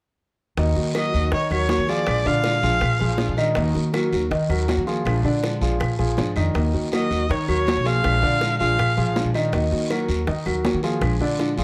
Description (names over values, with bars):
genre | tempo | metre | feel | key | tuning
latin, Cuban son and guajira | 161 BPM | 4/4 | straight | Eb minor | A4 = 440 Hz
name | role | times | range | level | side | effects
nylon-string guitar | accompaniment | 0.6-11.6 s | Eb3 to Gb4 | -30 LUFS | equal | none
warm concert grand piano | arpeggios | 0.6-11.6 s | D3 to Eb5 | -27 LUFS | equal | none
upright bass | bass | 0.6-11.6 s | Bb1 to Eb3 | -26 LUFS | equal | none
bongos | percussion | 0.6-11.6 s | none | -32 LUFS | equal | none
guiro | percussion | 0.6-11.6 s | none | -40 LUFS | equal | none
clear erhu | melody | 1.0-3.4, 6.9-9.1 s | Db5 to F5 | -26 LUFS | equal | none
claves | percussion | 1.0-11.2 s | none | -39 LUFS | equal | none
room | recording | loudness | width
light reverb | dark, warm production | -22 LUFS | mono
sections
0.6-11.6 A section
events
none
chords
0.6 Ebm7; 2.1 Bb7; 3.6 Ebm7; 5.1 Bb7; 6.5 Ebm7; 8.0 Bb7; 9.5 Ebm7; 11.0 Bb7